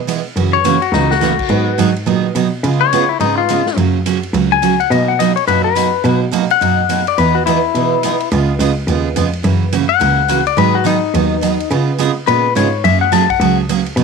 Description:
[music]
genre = country, western swing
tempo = 212 BPM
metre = 4/4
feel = swing 61% on 8ths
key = unclear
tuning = A4 = 439 Hz
[part]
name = rich cello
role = bass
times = 0.0-14.0 s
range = C#2 to C#3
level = -18 LUFS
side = equal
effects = none
[part]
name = picked steel-string acoustic guitar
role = accompaniment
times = 0.1-14.0 s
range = B2 to B4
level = -17 LUFS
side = right 12 dB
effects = none
[part]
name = swinging big-band drum kit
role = drums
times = 0.1-14.0 s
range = crash cymbal, hi-hat, kick drum, ride cymbal, snare drum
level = -27 LUFS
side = right 1 dB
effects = none
[part]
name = clean lap steel guitar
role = second line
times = 0.5-13.6 s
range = D#4 to A5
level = -15 LUFS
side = left 15 dB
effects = none
[sound]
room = light reverb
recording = 1960s-style stereo with parts hard left and right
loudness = -12 LUFS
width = side -5 dB against mid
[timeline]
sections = 0.0-14.0 A section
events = electric slide guitar solo 0.0-14.0; drum fill 0.9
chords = 0.4 F#7; 1.5 G#m7; 2.6 C#7; 3.8 F#; 4.9 Bmaj7; 7.2 Emaj7; 8.3 C#7; 9.4 F#7; 10.6 G#m7; 11.7 C#7; 12.8 F#add9

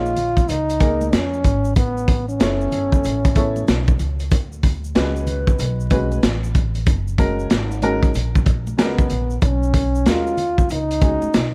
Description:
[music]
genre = hip hop, jazz-hop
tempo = 94 BPM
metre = 4/4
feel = swing 64% on 16ths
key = F# major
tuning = A4 = 440 Hz
[part]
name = breathy trombone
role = melody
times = 0.0-4.0, 8.8-11.5 s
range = B3 to E#4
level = -24 LUFS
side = equal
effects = none
[part]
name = dark upright piano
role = accompaniment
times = 0.0-11.3 s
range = G#3 to C#5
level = -26 LUFS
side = equal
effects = none
[part]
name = upright bass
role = bass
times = 0.0-11.5 s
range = F#1 to E#2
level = -26 LUFS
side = equal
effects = none
[part]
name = tube shaker and congas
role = percussion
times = 0.1-11.5 s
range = none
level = -38 LUFS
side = equal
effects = none
[part]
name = crunchy breakbeat drum kit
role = drums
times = 0.2-11.5 s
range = hi-hat, kick drum, snare drum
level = -20 LUFS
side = equal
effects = none
[sound]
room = small room ambience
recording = vinyl crackle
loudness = -19 LUFS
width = mono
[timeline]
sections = 0.0-11.5 A section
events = none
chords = 0.0 F#maj7 (rootless); 1.8 A; 4.3 Dmaj7; 6.9 F#; 9.4 B

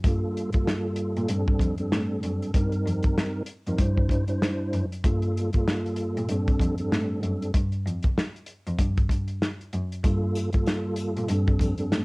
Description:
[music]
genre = hip hop, boom-bap hip-hop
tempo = 96 BPM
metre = 4/4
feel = swing 60% on 16ths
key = G minor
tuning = A4 = 437 Hz
[part]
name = mellow tonewheel organ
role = accompaniment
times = 0.0-12.0 s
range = G2 to C5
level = -28 LUFS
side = equal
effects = chorus vibrato, fast rotary speaker, cassette tape, high-pass filter, low-pass filter
[part]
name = rich cello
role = bass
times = 0.0-12.0 s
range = F2 to Bb2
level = -28 LUFS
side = equal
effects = tube saturation
[part]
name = warm soul drum kit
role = drums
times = 0.0-12.0 s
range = hi-hat, kick drum, snare drum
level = -25 LUFS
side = equal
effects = none
[part]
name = sleigh bells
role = percussion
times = 10.0-12.0 s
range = none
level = -46 LUFS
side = left 4 dB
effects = none
[sound]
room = light reverb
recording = home recording on cassette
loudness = -23 LUFS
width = side -27 dB against mid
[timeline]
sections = 0.0-12.0 A section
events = none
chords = 0.0 Gm7; 1.3 F69; 2.5 F7sus4; 3.8 Cadd9/G; 5.0 Gm7; 6.3 F69; 7.5 Fsus2; 8.8 N.C.; 10.0 Gm7; 11.3 F69

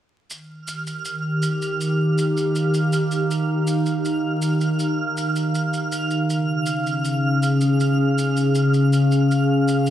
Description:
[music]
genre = folktronica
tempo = 80 BPM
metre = 4/4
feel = straight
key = Eb mixolydian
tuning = A4 = 439 Hz
[part]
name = warbly tape-like pad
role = sustained chords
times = 0.7-9.9 s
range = Db3 to F5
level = -19 LUFS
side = equal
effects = chorus, built-in reverb, vintage 12-bit sampler grit
[part]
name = shaker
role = drums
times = 0.3-9.9 s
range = none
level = -35 LUFS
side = right 1 dB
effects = none
[part]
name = twinkling granular texture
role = texture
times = 0.7-9.9 s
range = F6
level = -29 LUFS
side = right 3 dB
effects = built-in reverb
[sound]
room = wet lush hall reverb, RT60 2.5 s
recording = dark, warm production, vinyl crackle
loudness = -18 LUFS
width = side -11 dB against mid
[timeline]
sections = 0.3-9.9 A section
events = none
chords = 0.3 Ebadd9; 6.3 Db

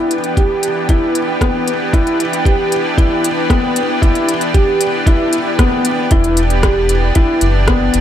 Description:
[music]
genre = piano and strings electronica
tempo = 115 BPM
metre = 4/4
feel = straight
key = E minor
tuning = A4 = 443 Hz
[part]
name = lush unison pad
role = sustained chords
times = 0.0-8.0 s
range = E3 to G4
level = -18 LUFS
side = equal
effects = chorus, sidechain pumping
[part]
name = felt-muted upright piano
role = riff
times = 0.0-8.0 s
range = B3 to G4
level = -17 LUFS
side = equal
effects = digital delay
[part]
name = round analog bass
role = bass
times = 0.0-8.0 s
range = E1 to E2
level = -16 LUFS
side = equal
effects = tube saturation, sidechain pumping, high-pass filter
[part]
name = organic electronic drum kit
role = drums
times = 0.1-8.0 s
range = hi-hat, rim click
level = -22 LUFS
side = left 1 dB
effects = none
[part]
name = electronic kick drum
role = drums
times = 0.4-7.8 s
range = none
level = -13 LUFS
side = equal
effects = overdrive
[sound]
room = moderate lush hall reverb, RT60 1.9 s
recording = none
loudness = -12 LUFS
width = side -10 dB against mid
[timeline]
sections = 0.0-6.1 A section; 6.1-8.0 B section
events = build-up 0.0-6.1; drop 6.1-8.0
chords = 0.0 Em7

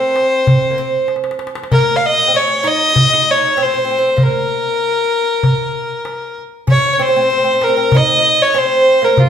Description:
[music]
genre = Arabic maqam ensemble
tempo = 96 BPM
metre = 4/4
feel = straight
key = unclear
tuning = A4 = 440 Hz
[part]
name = warm violin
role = melody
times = 0.0-9.3 s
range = F4 to F5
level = -13 LUFS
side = left 2 dB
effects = none
[part]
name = oud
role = second line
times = 0.0-9.3 s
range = F3 to Eb4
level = -20 LUFS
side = right 6 dB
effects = none
[part]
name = darbuka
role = percussion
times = 0.2-9.3 s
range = none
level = -16 LUFS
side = equal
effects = none
[sound]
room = wet large studio reverb, RT60 1.1 s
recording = band playing live in one room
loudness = -11 LUFS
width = side -8 dB against mid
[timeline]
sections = 0.0-9.3 A section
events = drum fill 1.1-1.7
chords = none

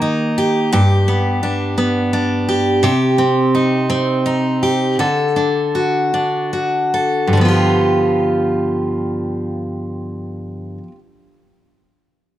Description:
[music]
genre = pop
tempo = 48-57 BPM (dotted quarters)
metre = 6/8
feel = straight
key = unclear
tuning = A4 = 439 Hz
[part]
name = picked steel-string acoustic guitar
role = solo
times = 0.0-11.0 s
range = G2 to A4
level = -14 LUFS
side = equal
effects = none
[sound]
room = light reverb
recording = none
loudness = -14 LUFS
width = side -12 dB against mid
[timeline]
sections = 0.0-7.3 A section; 7.3-12.3 B section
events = slowing down 2.8-7.3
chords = 0.0 Eb; 0.7 G; 2.8 Cm; 5.0 D; 7.3 G7

